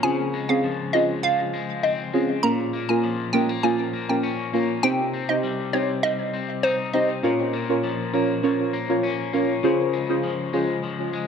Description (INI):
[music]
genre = dancehall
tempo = 100 BPM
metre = 4/4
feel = straight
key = Bb dorian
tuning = A4 = 440 Hz
[part]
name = hollow square pluck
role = melody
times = 0.0-7.1 s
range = C5 to Bb5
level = -25 LUFS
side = equal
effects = chorus, dub echo
[part]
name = deep mellow chord stab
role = accompaniment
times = 0.0-10.7 s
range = Bb3 to Db5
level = -23 LUFS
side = right 1 dB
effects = chorus, dub echo
[part]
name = electric guitar at the edge of break-up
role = arpeggios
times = 0.0-11.3 s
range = Bb2 to Eb4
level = -28 LUFS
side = left 5 dB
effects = harmonic tremolo, dub echo
[sound]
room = wet spring reverb, RT60 1.4 s, digital ambience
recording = echo-heavy mix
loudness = -21 LUFS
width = side -7 dB against mid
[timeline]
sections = 0.0-11.3 A section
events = none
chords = 0.0 Dbmaj7; 2.4 Bbm; 4.8 Cm; 7.2 Bbm; 9.6 Dbmaj7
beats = | 0.03 0.63 1.23 1.83 | 2.43 3.03 3.63 4.23 | 4.83 5.43 6.03 6.63 | 7.23 7.83 8.43 9.03 | 9.63 10.23 10.83